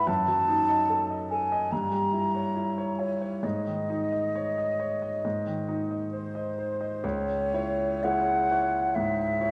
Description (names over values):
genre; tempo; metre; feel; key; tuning
classical, romantic duo for flute and grand piano; 58-74 BPM; 4/4; rubato; C# minor; A4 = 443 Hz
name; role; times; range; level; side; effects
mellow hollow silver concert flute; melody; 0.0-9.5 s; B#4 to Bb5; -30 LUFS; equal; none
bright grand piano; accompaniment; 0.0-9.5 s; C#2 to D#5; -32 LUFS; equal; none
room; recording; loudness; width
moderate concert hall reverb, RT60 2.2 s; dark, warm production, nothing above 11.0 kHz; -28 LUFS; mono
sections
0.0-7.0 A section; 7.0-9.5 B section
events
none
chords
0.1 D#dim/F#; 1.7 Gdim7; 3.4 G#sus4; 5.2 G#; 7.0 C#m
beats
| 0.07 0.89 1.72 2.56 | 3.44 4.35 5.24 6.12 | 7.03 8.03 8.94